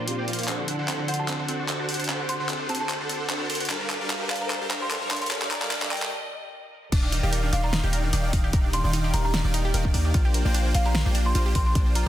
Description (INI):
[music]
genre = future bass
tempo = 149 BPM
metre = 4/4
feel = swing 54% on 16ths, half-time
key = Eb lydian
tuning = A4 = 440 Hz
[part]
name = ethereal airy pad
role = sustained chords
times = 0.0-12.1 s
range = D2 to D5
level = -38 LUFS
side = right 1 dB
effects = ensemble chorus, built-in reverb, phaser, sidechain pumping
[part]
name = supersaw chords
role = riff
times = 0.0-12.0 s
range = D3 to C6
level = -30 LUFS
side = right 1 dB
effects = sidechain pumping, low-pass filter
[part]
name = riser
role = sound effects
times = 0.0-6.1 s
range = none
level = -36 LUFS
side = left 1 dB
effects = none
[part]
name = pop drum kit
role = drums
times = 0.1-12.0 s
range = crash cymbal, handclaps, hi-hat, snare drum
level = -29 LUFS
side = equal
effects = high-pass filter on hats, soft clipping on snare, high-pass filter on snare, high-pass filter on cymbals, high-pass filter on room
[part]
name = wide unison pluck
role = arpeggios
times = 0.5-12.0 s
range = C4 to C5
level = -35 LUFS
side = right 1 dB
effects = sidechain pumping, tape echo
[part]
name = folk marimba with medium mallets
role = melody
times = 1.1-12.0 s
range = F5 to C6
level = -33 LUFS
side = equal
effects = sidechain pumping, low-pass filter, tape echo
[part]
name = long sustained 808-style bass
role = bass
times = 6.9-12.0 s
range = Eb1 to Eb2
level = -24 LUFS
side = equal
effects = sidechain pumping
[part]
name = electronic kick drum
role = drums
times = 6.9-11.8 s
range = none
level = -23 LUFS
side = equal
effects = none
[sound]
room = light reverb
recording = dense, heavily limited modern master, high-pass filter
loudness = -23 LUFS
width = side -12 dB against mid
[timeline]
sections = 0.0-6.9 A section; 6.9-12.1 B section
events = build-up 0.0-6.9; riser 0.0-6.1; filter sweep on supersaw synth 0.0-6.9; filter sweep on marimba 0.0-6.9; filter sweep on ambient pad 0.0-6.9; drum fill 0.5-6.1; break 6.1-6.9; drop 6.9-12.1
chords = 0.5 D7; 3.7 Gm9; 6.9 Ebmaj7; 10.1 Bb6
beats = 0.08 | 0.48 0.88 1.28 1.69 | 2.09 2.49 2.90 3.30 | 3.70 4.10 4.51 4.91 | 5.31 5.71 6.12 6.52 | 6.92 7.33 7.73 8.13 | 8.53 8.94 9.34 9.74 | 10.14 10.55 10.95 11.35 | 11.76